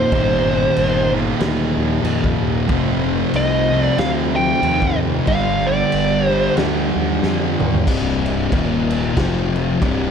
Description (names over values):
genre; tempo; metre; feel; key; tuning
stoner and doom metal; 93 BPM; 4/4; swing 59% on 8ths; unclear; A4 = 441 Hz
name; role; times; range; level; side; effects
fuzz lead guitar; melody; 0.0-6.5 s; C5 to G5; -19 LUFS; right 1 dB; distortion, slapback echo
tonewheel organ; sustained chords; 0.0-10.1 s; C3 to G4; -30 LUFS; right 1 dB; none
fuzz guitar; riff; 0.0-7.9 s; Eb2 to G3; -23 LUFS; right 13 dB; distortion
thick fuzz guitar; riff; 0.0-10.1 s; C2 to G3; -22 LUFS; left 9 dB; distortion
thick fuzz guitar; riff; 0.0-10.1 s; C2 to G3; -24 LUFS; right 1 dB; distortion
fuzz fingered electric bass; bass; 0.0-10.1 s; C1 to F2; -24 LUFS; equal; overdrive
raw garage drum kit; drums; 0.1-10.0 s; crash cymbal, kick drum, snare drum, toms; -24 LUFS; equal; none
room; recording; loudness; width
light reverb, studio reverb; none; -15 LUFS; side -7 dB against mid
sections
0.0-7.9 A section; 7.9-10.1 B section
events
drum fill 7.2-7.9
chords
0.0 Eb/G; 2.7 F5; 5.3 G5; 7.9 C5; 8.5 Eb5; 9.2 F5